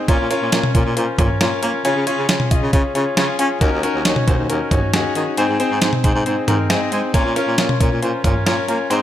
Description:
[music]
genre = synth-pop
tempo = 136 BPM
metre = 4/4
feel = straight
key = Bb minor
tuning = A4 = 438 Hz
[part]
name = clear concert grand piano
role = accompaniment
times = 0.0-9.0 s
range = C4 to Eb5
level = -19 LUFS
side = left 2 dB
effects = none
[part]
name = breathy baritone saxophone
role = bass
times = 0.1-9.0 s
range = Eb2 to Db4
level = -22 LUFS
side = equal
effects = none
[part]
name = clean 12-bit digital drum machine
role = drums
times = 0.1-9.0 s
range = hi-hat, kick drum, snare drum, toms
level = -18 LUFS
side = right 1 dB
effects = none
[sound]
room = light reverb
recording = none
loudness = -15 LUFS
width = side -12 dB against mid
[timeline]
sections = 0.0-9.0 A section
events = none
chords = 0.1 Bbm; 1.8 Db; 3.6 Ebm7; 5.4 Ab; 7.1 Bbm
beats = | 0.08 0.52 0.97 1.41 | 1.85 2.29 2.73 3.17 | 3.61 4.05 4.50 4.94 | 5.38 5.82 6.26 6.70 | 7.14 7.58 8.02 8.47 | 8.91

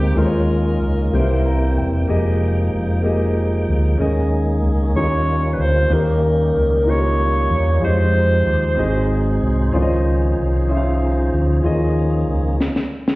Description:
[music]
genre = slow gospel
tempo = 63 BPM (dotted quarters)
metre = 6/8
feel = straight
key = unclear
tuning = A4 = 440 Hz
[part]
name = bright alto saxophone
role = melody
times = 0.0-1.4, 5.0-9.1 s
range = G4 to Db5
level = -21 LUFS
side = equal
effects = slapback echo, plate reverb
[part]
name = warm concert grand piano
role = accompaniment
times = 0.0-12.6 s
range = Ab2 to Bb5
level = -22 LUFS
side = left 1 dB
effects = none
[part]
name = tonewheel organ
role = sustained chords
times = 0.0-12.6 s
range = Eb3 to G5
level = -24 LUFS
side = right 1 dB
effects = slow rotary speaker, overdrive, chorus vibrato
[part]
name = fingered electric bass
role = bass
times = 0.0-12.6 s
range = E1 to F2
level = -18 LUFS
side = equal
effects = none
[part]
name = snare drum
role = drums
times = 12.6-13.2 s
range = none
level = -19 LUFS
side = equal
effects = none
[sound]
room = light reverb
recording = heard muffled through a wall, stone room reverb, EQ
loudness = -15 LUFS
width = side -20 dB against mid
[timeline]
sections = 0.0-13.2 A section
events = grand piano fill 1.1-2.1; drum fill 12.6-13.2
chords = 0.2 Eb9sus4; 1.1 C7; 2.1 Fm11; 4.0 Eb7sus4; 5.0 Eb9; 5.9 Eb7; 7.8 Fm9; 8.8 Ab7; 9.7 Dbmaj9; 11.6 Eb9sus4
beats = | 0.17 1.13 | 2.09 3.04 | 4.00 4.96 | 5.91 6.87 | 7.82 8.78 | 9.73 10.69 | 11.64 12.59

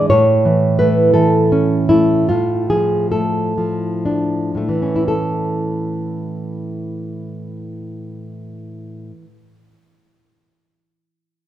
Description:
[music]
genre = romantic piece for solo classical guitar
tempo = 37-58 BPM (dotted quarters)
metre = 6/8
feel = rubato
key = A major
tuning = A4 = 440 Hz
[part]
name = nylon-string guitar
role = solo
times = 0.0-9.6 s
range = A2 to C#5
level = -15 LUFS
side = equal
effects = none
[sound]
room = light reverb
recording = minimal, uncompressed stereo recording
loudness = -15 LUFS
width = side -12 dB against mid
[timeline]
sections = 0.0-5.1 A section; 5.1-10.8 B section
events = slowing down 0.0-5.1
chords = 0.1 A; 2.3 Dm/A; 5.1 A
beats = | 0.10 1.14 | 2.29 3.56 | 5.08 6.49 | 7.93 9.38

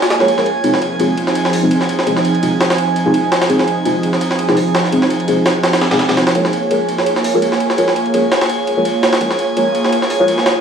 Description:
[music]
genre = drum and bass, jungle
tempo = 168 BPM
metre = 4/4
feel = swing 55% on 16ths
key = Bb minor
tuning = A4 = 439 Hz
[part]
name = airy breathy pad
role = sustained chords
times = 0.0-10.6 s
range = F3 to Db5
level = -17 LUFS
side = right 2 dB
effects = chorus
[part]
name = jungle sampler-style drum kit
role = drums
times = 0.0-10.6 s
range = hi-hat, ride cymbal, snare drum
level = -18 LUFS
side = equal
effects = overdrive, high-pass filter on cymbals, studio reverb, high-pass filter on snare, high-pass filter on hats
[part]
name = drifting glass-harmonics texture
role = texture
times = 0.0-10.6 s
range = Ab5 to Ab6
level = -22 LUFS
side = right 2 dB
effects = chorus, built-in reverb
[part]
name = deep mellow chord stab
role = stabs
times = 0.2-10.3 s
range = C4 to Db5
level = -17 LUFS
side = left 1 dB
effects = chorus, phaser, dub echo
[sound]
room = moderate echo chamber reverb, RT60 1.4 s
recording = dry, gritty hardware recording, vinyl crackle, small room reverb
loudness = -12 LUFS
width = side -7 dB against mid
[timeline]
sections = 0.0-10.6 A section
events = none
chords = 0.0 Bbm7; 0.6 Fm7; 6.4 Bbm7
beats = 0.28 | 0.64 1.00 1.35 1.71 | 2.07 2.42 2.78 3.14 | 3.50 3.85 4.21 4.57 | 4.92 5.28 5.64 6.00 | 6.35 6.71 7.07 7.42 | 7.78 8.14 8.50 8.85 | 9.21 9.57 9.93 10.28

